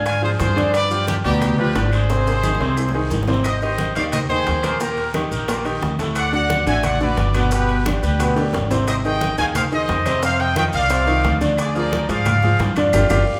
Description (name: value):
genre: latin, salsa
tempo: 177 BPM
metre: 4/4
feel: straight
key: unclear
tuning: A4 = 440 Hz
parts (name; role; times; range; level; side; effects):
- bright trumpet section; melody; 0.0-13.4 s; D4 to Ab5; -24 LUFS; equal; none
- bright baby grand piano; accompaniment; 0.0-13.2 s; A2 to G5; -24 LUFS; equal; none
- upright bass; bass; 0.0-13.2 s; G1 to Ab2; -24 LUFS; equal; none
- bongos; percussion; 0.1-13.2 s; none; -35 LUFS; equal; none
- claves; percussion; 0.1-13.2 s; none; -38 LUFS; equal; none
- congas; percussion; 0.1-13.2 s; none; -31 LUFS; equal; none
- guiro; percussion; 0.1-13.2 s; none; -40 LUFS; equal; none
- maracas; percussion; 0.1-13.2 s; none; -41 LUFS; equal; none
- timbales; percussion; 0.1-13.2 s; none; -34 LUFS; equal; none
room: wet large studio reverb, RT60 1.1 s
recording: band playing live in one room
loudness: -19 LUFS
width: mono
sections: 0.0-3.5 A section; 3.5-13.4 B section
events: drum fill 2.1-3.5, 8.4-8.9; band accent 12.9-13.4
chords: 0.0 Ddim; 0.7 G7; 2.1 Ab; 3.5 Abmaj7; 4.8 Eb; 6.2 D; 7.5 G; 8.9 Ab; 10.2 F5; 11.6 Ddim